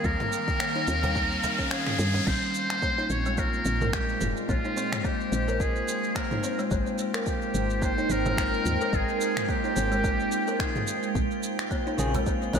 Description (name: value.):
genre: organic downtempo.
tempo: 108 BPM.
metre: 4/4.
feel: swing 56% on 16ths.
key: unclear.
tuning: A4 = 438 Hz.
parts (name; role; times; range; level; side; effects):
trumpet with metal mute; melody; 0.0-11.2 s; F4 to Db5; -30 LUFS; left 1 dB; ping-pong delay.
warbly tape-like pad; sustained chords; 0.0-12.6 s; Bb2 to G5; -32 LUFS; right 1 dB; chorus, built-in reverb, phaser, sidechain pumping.
kalimba; arpeggios; 0.0-12.6 s; G3 to Bb4; -32 LUFS; equal; low-pass filter, ping-pong delay.
woody FM bass; bass; 0.0-12.6 s; F1 to G2; -29 LUFS; equal; sidechain pumping.
deep house drum kit; drums; 0.0-12.6 s; crash cymbal, finger snaps, shaker, toms; -34 LUFS; right 1 dB; none.
electronic kick drum; drums; 0.0-12.4 s; none; -31 LUFS; equal; none.
riser; sound effects; 0.0-2.3 s; none; -35 LUFS; equal; none.
cajon; percussion; 0.2-2.2, 12.1-12.6 s; none; -37 LUFS; right 2 dB; none.
drifting glass-harmonics texture; texture; 3.0-12.6 s; F4 to G5; -37 LUFS; equal; chorus, built-in reverb.
semi-hollow electric guitar; accompaniment; 12.0-12.6 s; Db3 to Ab4; -31 LUFS; left 1 dB; analog chorus, sidechain pumping, ping-pong delay.
room: wet lush hall reverb, RT60 2.0 s.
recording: dreamy mix soaked in reverb.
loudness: -24 LUFS.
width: side -6 dB against mid.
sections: 0.0-2.3 A section; 2.3-12.6 A section.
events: riser 0.0-2.3.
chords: 0.0 Eb7; 2.3 Bb5; 6.7 Abmaj7; 11.2 Bbm7.